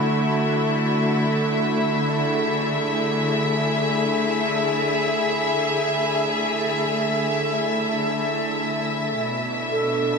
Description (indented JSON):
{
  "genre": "ambient",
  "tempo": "free time",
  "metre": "none",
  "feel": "none",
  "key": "D lydian",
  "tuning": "A4 = 440 Hz",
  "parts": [
    { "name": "warm chamber string section", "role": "sustained chords", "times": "0.0-10.2 s", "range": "B2 to E5", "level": "-20 LUFS", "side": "equal", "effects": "none" },
    { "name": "alto flute", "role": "melody", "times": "9.7-10.2 s", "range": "A4", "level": "-22 LUFS", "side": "right 3 dB", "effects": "none" }
  ],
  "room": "wet shimmer reverb, RT60 7.6 s",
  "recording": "none",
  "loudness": "-20 LUFS",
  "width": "side -4 dB against mid",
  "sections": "0.0-10.2 A section",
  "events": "none",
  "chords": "0.0 Dadd9; 9.2 Bm7"
}